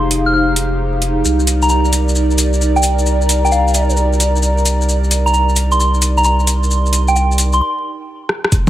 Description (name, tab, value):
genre	UK garage, two-step garage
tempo	132 BPM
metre	4/4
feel	swing 67% on 16ths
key	unclear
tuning	A4 = 440 Hz
part	airy breathy pad	sustained chords	0.0-8.7 s	Eb4 to D5	-25 LUFS	equal	chorus, sidechain pumping
part	saturated sub bass	bass	0.0-8.7 s	F1 to C2	-15 LUFS	equal	sidechain pumping
part	warbly tape-like pad	texture	0.0-7.6 s	Ab3 to C6	-20 LUFS	right 2 dB	chorus, built-in reverb, sidechain pumping
part	garage drum kit	drums	0.1-8.7 s	congas, hi-hat, rim click	-17 LUFS	equal	none
part	soft synth bell	melody	0.3-7.7 s	F5 to F6	-18 LUFS	equal	chorus, phaser, dub echo
part	maracas	percussion	1.2-8.7 s	none	-22 LUFS	left 2 dB	none
part	electronic kick drum	drums	8.5-8.6 s	none	-13 LUFS	equal	none
room	light reverb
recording	vinyl crackle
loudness	-12 LUFS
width	side -13 dB against mid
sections	0.0-8.5 A section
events	break 7.6-8.5; drum fill 8.3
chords	0.0 Fm9; 1.2 Cm9